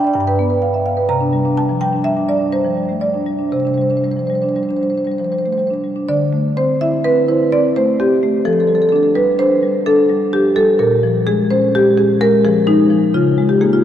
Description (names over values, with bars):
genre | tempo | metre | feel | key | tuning
classical, contemporary piece for solo marimba | 127 BPM | 5/4 | rubato | unclear | A4 = 440 Hz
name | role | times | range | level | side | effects
marimba with medium mallets | solo | 0.0-13.8 s | G2 to Bb5 | -13 LUFS | equal | none
room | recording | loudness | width
wet cathedral reverb, RT60 5.5 s | in a vast, echoing space | -13 LUFS | side -10 dB against mid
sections
0.0-6.1 A section; 6.1-13.8 B section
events
none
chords
0.2 G7; 1.1 Csus2; 6.1 Dsus2; 8.5 F69; 10.8 Bbm7; 13.1 C#6